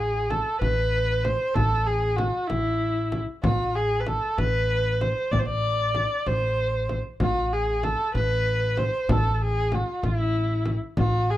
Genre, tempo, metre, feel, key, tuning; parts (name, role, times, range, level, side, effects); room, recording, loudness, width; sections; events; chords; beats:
Persian modal ensemble; 64 BPM (dotted quarters); 6/8; straight; A avaz esfahan; A4 = 440 Hz
warm kamancheh; melody; 0.0-11.4 s; E4 to D5; -25 LUFS; equal; plate reverb
upright bass; bass; 0.0-11.4 s; A1; -26 LUFS; equal
frame drum; percussion; 0.3-11.1 s; -28 LUFS; equal
light reverb; dark, warm production; -22 LUFS; side -14 dB against mid
0.0-11.4 A section
0.61 | 1.55 2.50 | 3.44 4.38 | 5.32 6.26 | 7.20 8.14 | 9.09 10.03 | 10.97